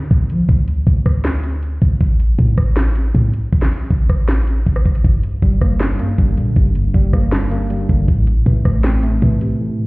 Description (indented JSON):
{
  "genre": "hip hop, trap",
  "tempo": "158 BPM",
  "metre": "4/4",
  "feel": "half-time",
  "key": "unclear",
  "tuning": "A4 = 437 Hz",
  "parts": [
    { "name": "clean 808-style bass", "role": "bass", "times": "0.0-9.4 s", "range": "G1 to F3", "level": "-16 LUFS", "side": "equal", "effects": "none" },
    { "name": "trap drum kit", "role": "drums", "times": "0.1-9.5 s", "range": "handclaps, hi-hat, kick drum, rim click, snare drum", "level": "-16 LUFS", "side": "equal", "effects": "none" },
    { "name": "mellow tine electric piano", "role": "accompaniment", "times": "5.0-9.9 s", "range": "G2 to D4", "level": "-19 LUFS", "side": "equal", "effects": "medium stereo tremolo, low-pass filter" }
  ],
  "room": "little or no reverb",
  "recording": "heard muffled through a wall, stone room reverb, EQ",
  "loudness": "-13 LUFS",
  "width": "side -24 dB against mid",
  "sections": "0.0-9.9 A section",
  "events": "break 0.0-5.0, 9.6",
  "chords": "0.0 N.C.; 5.0 Gm; 8.1 Am",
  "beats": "0.11 | 0.49 0.87 1.25 1.63 | 2.01 2.39 2.77 3.15 | 3.53 3.91 4.29 4.67 | 5.04 5.42 5.80 6.18 | 6.56 6.94 7.32 7.70 | 8.08 8.46 8.84 9.22 | 9.60"
}